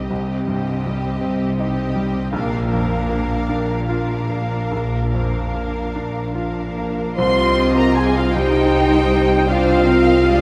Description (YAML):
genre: cinematic, emotional film score for orchestra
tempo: 47-54 BPM (dotted quarters)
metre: 6/8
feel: rubato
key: C minor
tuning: A4 = 439 Hz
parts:
  - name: warm studio violin section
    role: melody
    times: 0.0-10.4 s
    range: Eb5 to F5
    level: -34 LUFS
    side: equal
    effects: none
  - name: warm studio violin section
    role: second line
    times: 0.0-10.4 s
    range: G4 to C6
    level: -27 LUFS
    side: equal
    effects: none
  - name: bright baby grand piano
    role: accompaniment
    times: 0.0-10.4 s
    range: Bb1 to F4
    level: -29 LUFS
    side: equal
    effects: none
  - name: warm studio viola section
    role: accompaniment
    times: 0.0-10.4 s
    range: Ab3 to C5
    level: -28 LUFS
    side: equal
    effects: none
  - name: rich studio double bass section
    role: bass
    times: 0.1-10.4 s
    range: Bb1 to C2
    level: -25 LUFS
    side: equal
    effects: none
  - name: warm studio cello section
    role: bass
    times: 0.1-10.4 s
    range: Bb2 to Eb4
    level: -26 LUFS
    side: equal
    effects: none
  - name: mellow French horn section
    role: sustained chords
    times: 7.2-10.4 s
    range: F4 to C5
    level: -20 LUFS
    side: equal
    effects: none
room: wet huge ambient reverb, RT60 8.1 s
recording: in a vast, echoing space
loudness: -19 LUFS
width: mono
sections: 0.0-7.2 A section; 7.2-10.4 B section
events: none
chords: 0.0 Cm; 2.3 Bb; 7.2 Cm